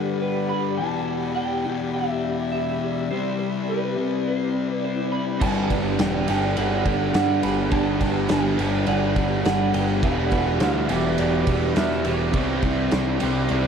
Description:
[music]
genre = rock, shoegaze and dream pop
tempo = 104 BPM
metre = 4/4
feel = straight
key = unclear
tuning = A4 = 439 Hz
[part]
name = electric guitar through a small old amp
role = melody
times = 0.0-13.7 s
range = B4 to B5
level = -29 LUFS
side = right 4 dB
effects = analog chorus, tape echo
[part]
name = shimmering ambient pad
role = sustained chords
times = 0.0-13.7 s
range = C4 to C6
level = -31 LUFS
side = right 1 dB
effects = chorus, built-in reverb
[part]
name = thick fuzz guitar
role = riff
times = 0.0-13.7 s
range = E2 to C4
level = -26 LUFS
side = left 7 dB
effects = distortion, wide subtle chorus
[part]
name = distorted electric guitar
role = riff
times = 5.4-13.7 s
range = E2 to C4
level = -29 LUFS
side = right 1 dB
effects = distortion
[part]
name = overdriven electric guitar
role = riff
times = 5.4-13.7 s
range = E2 to G4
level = -28 LUFS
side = right 8 dB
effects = reverse reverb
[part]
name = growling picked electric bass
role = bass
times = 5.4-13.7 s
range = E1 to G2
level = -26 LUFS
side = right 1 dB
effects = overdrive
[part]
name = loose indie drum kit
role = drums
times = 5.4-13.6 s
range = crash cymbal, kick drum, ride cymbal, snare drum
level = -26 LUFS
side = right 1 dB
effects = none
[part]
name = picked twelve-string acoustic guitar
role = arpeggios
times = 5.7-13.7 s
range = E3 to G4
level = -33 LUFS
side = right 7 dB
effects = none
[sound]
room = wet plate reverb, RT60 3.0 s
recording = dreamy mix soaked in reverb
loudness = -20 LUFS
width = side -7 dB against mid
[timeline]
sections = 0.0-13.7 A section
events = none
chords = 0.0 Gmaj7; 0.8 Em7; 3.1 Cmaj9; 5.4 Em7; 12.3 Cmaj9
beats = 0.22 | 0.80 1.38 1.96 2.53 | 3.11 3.69 4.26 4.84 | 5.42 5.99 6.57 7.15 | 7.72 8.30 8.88 9.45 | 10.03 10.61 11.19 11.76 | 12.34 12.92 13.49

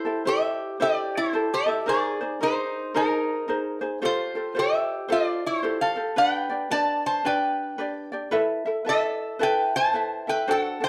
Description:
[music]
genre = Hawaiian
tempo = 112 BPM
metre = 4/4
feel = swing 62% on 8ths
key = unclear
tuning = A4 = 440 Hz
[part]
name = lap resonator guitar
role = melody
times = 0.0-10.9 s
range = Eb4 to A5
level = -26 LUFS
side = equal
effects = plate reverb
[part]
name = ukulele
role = accompaniment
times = 0.0-10.9 s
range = D4 to E5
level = -30 LUFS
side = equal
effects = none
[sound]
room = wet studio reverb, RT60 0.6 s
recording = none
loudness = -25 LUFS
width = mono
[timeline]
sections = 0.0-10.9 A section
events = none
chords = 0.0 C6; 1.9 Abadd9; 4.0 Fadd9; 6.2 G; 8.3 Asus2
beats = 0.25 0.79 1.33 | 1.87 2.41 2.94 3.48 | 4.02 4.56 5.10 5.63 | 6.17 6.71 7.25 7.79 | 8.33 8.86 9.40 9.94 | 10.48

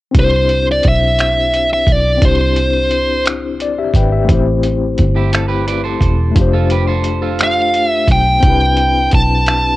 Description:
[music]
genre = slow six-eight R&B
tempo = 58 BPM (dotted quarters)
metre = 6/8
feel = straight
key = C major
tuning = A4 = 440 Hz
[part]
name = tine electric piano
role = accompaniment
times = 0.1-9.8 s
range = A3 to G5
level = -19 LUFS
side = left 5 dB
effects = overdrive, fast tremolo, cassette tape
[part]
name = dusty soul sampler-style drum kit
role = drums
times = 0.1-9.6 s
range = finger snaps, hi-hat, kick drum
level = -15 LUFS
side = right 1 dB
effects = cassette tape
[part]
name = high-gain lead guitar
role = melody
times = 0.2-3.2, 7.4-9.8 s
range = C5 to A5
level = -14 LUFS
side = equal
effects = distortion, cassette tape
[part]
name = vintage muted fingered electric bass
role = bass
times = 0.2-9.8 s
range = E1 to C2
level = -16 LUFS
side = right 1 dB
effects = none
[part]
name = electric guitar at the edge of break-up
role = second line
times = 5.2-8.2 s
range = E4 to D5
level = -22 LUFS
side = right 7 dB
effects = cassette tape
[sound]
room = digital ambience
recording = home recording on cassette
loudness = -11 LUFS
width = side -17 dB against mid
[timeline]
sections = 0.2-9.8 A section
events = none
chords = 0.2 Cmaj7; 4.3 Am7; 6.4 F69; 8.4 Cmaj7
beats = | 0.15 1.19 | 2.22 3.25 | 4.29 5.32 | 6.36 7.39 | 8.43 9.46

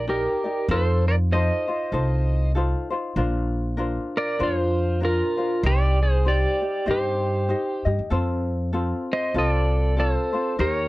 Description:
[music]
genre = Hawaiian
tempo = 97 BPM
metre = 4/4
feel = swing 59% on 8ths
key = unclear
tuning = A4 = 441 Hz
[part]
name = pedal steel guitar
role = melody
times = 0.0-10.9 s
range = F4 to Eb5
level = -24 LUFS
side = right 1 dB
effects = none
[part]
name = ukulele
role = accompaniment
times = 0.0-10.9 s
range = C4 to Eb5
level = -28 LUFS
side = left 2 dB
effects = none
[part]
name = upright bass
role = bass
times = 0.0-10.9 s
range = Bb1 to G2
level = -23 LUFS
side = equal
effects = none
[sound]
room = little or no reverb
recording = dry, close 1970s-style studio recording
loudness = -21 LUFS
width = side -18 dB against mid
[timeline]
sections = 0.0-10.9 A section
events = none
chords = 0.0 Ebmaj7; 0.7 F7; 3.2 Bbadd9; 5.6 Cm; 8.1 F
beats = 0.07 | 0.69 1.31 1.93 2.55 | 3.17 3.79 4.41 5.02 | 5.64 6.26 6.88 7.50 | 8.12 8.73 9.35 9.97 | 10.59

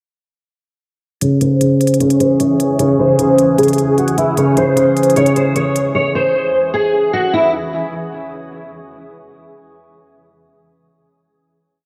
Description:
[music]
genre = hip hop, trap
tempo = 152 BPM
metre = 4/4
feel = half-time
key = C# harmonic minor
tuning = A4 = 440 Hz
[part]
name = fingerpicked steel-string acoustic guitar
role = melody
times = 1.2-7.5 s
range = E4 to C#5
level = -18 LUFS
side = equal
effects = ensemble chorus, low-pass filter, analog delay
[part]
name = dark concert grand piano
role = accompaniment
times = 1.2-6.1 s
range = C#3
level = -17 LUFS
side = equal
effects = low-pass filter
[part]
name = granular cloud pad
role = sustained chords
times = 2.0-7.5 s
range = E3 to G#4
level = -24 LUFS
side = equal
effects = built-in reverb, low-pass filter
[part]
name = electronic hi-hat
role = drums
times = 1.2-5.8 s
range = none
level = -28 LUFS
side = equal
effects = none
[sound]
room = wet plate reverb, RT60 1.7 s, studio ambience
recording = dreamy mix soaked in reverb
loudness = -14 LUFS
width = mono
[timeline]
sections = 1.2-7.5 breakdown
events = filter sweep 1.2-7.5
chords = 1.2 C#m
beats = | 1.22 1.61 2.00 2.40 | 2.79 3.19 3.58 3.98 | 4.37 4.77 5.16 5.56 | 5.95 6.35 6.74 7.14

